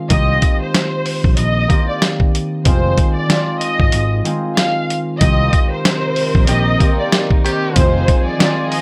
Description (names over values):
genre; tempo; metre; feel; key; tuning
hip hop, boom-bap hip-hop; 94 BPM; 4/4; swing 59% on 16ths; unclear; A4 = 441 Hz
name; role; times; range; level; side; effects
concert harp; accompaniment; 0.0-8.8 s; Eb3 to G4; -23 LUFS; equal; cassette tape, high-pass filter, low-pass filter
rich studio violin section; melody; 0.1-8.8 s; C5 to F5; -23 LUFS; equal; high-pass filter, low-pass filter
fingered electric bass; bass; 0.1-8.0 s; F1 to C2; -19 LUFS; equal; none
dusty soul sampler-style drum kit; drums; 0.1-8.8 s; hi-hat, kick drum, snare drum; -17 LUFS; equal; none
warm studio string section; sustained chords; 5.2-8.8 s; C3 to Bb4; -27 LUFS; equal; high-pass filter, low-pass filter
warm horn section; stabs; 6.5-7.9 s; Eb3 to G4; -25 LUFS; equal; high-pass filter, low-pass filter
room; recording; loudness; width
light reverb; none; -15 LUFS; mono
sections
0.0-5.2 A section; 5.2-8.8 B section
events
break 3.9-5.2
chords
0.1 Cm7; 2.7 Fm7; 5.2 Cm7; 7.8 Fm7